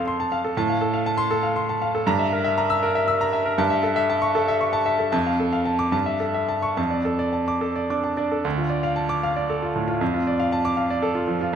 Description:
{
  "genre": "classical, virtuoso piano study",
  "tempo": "70-82 BPM (dotted quarters)",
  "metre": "6/8",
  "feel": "rubato",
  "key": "D minor",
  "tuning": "A4 = 438 Hz",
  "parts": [
    { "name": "bright baby grand piano", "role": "solo", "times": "0.0-11.6 s", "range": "D2 to E6", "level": "-20 LUFS", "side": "equal", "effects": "none" }
  ],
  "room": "wet recital hall reverb, RT60 1.6 s",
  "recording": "none",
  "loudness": "-20 LUFS",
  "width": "side -8 dB against mid",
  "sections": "0.0-8.5 A section; 8.5-11.6 A section",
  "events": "none",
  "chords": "0.0 F; 0.6 F/A; 2.1 Edim/G; 3.6 A7/G; 5.1 Dm/F; 5.9 A7/G; 6.8 Dm/F; 8.5 Dm; 10.0 Dm/F"
}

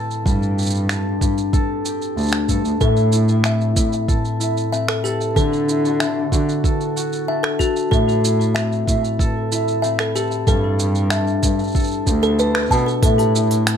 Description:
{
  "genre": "folktronica",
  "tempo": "94 BPM",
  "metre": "4/4",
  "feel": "straight",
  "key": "A dorian",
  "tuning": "A4 = 441 Hz",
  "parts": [
    { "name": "concert harp", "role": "arpeggios", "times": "0.0-13.8 s", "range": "A2 to A4", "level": "-21 LUFS", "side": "left 1 dB", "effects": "ping-pong delay" },
    { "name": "organic electronic drum kit", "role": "drums", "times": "0.1-13.8 s", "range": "finger snaps, hi-hat, shaker", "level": "-25 LUFS", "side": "right 2 dB", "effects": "none" },
    { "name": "muted cello", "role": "bass", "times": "0.3-13.8 s", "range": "D2 to D3", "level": "-21 LUFS", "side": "equal", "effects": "none" },
    { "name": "electronic kick drum", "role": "drums", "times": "0.3-13.2 s", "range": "none", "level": "-19 LUFS", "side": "right 1 dB", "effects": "none" },
    { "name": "music box", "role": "second line", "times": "2.8-13.3 s", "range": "F#4 to A5", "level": "-23 LUFS", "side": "left 2 dB", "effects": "ping-pong delay" }
  ],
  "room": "light reverb",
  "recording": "none",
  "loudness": "-16 LUFS",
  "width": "side -8 dB against mid",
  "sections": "0.0-13.0 A section",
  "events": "band accent 12.5-12.9",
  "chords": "0.3 Gsus2; 2.8 Am; 5.4 D; 7.9 Am; 10.5 Gsus2; 13.0 Am"
}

